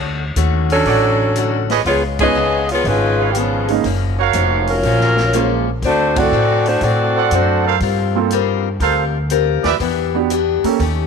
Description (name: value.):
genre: jazz, big band swing.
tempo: 121 BPM.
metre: 4/4.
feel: swing 68% on 8ths.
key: unclear.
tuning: A4 = 440 Hz.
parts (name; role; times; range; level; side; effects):
picked acoustic archtop guitar; accompaniment; 0.0-11.1 s; F#2 to Bb4; -22 LUFS; left 12 dB; none.
upright bass; bass; 0.0-11.1 s; E#1 to A2; -20 LUFS; equal; none.
swinging big-band drum kit; drums; 0.4-11.0 s; hi-hat, kick drum, ride cymbal, snare drum; -28 LUFS; left 3 dB; none.
mellow saxophone section; melody; 0.7-7.8 s; E#3 to Eb5; -16 LUFS; left 1 dB; none.
warm trumpet section; stabs; 0.9-9.7 s; F#4 to F#5; -21 LUFS; right 11 dB; none.
clear concert grand piano; accompaniment; 2.2-10.8 s; G#3 to A4; -21 LUFS; right 13 dB; none.
room: light reverb, studio ambience.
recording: 1960s-style stereo with parts hard left and right.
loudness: -14 LUFS.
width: side -5 dB against mid.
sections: 0.0-11.1 A section.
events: band accent 2.1, 6.1.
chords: 0.0 Dmaj7; 1.9 C#7; 3.8 F#maj7; 5.8 D7; 7.8 Gm11; 9.8 Em7.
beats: 0.37 0.86 1.36 | 1.86 2.35 2.85 3.35 | 3.85 4.34 4.84 5.33 | 5.83 6.33 6.82 7.32 | 7.82 8.31 8.81 9.30 | 9.80 10.30 10.79.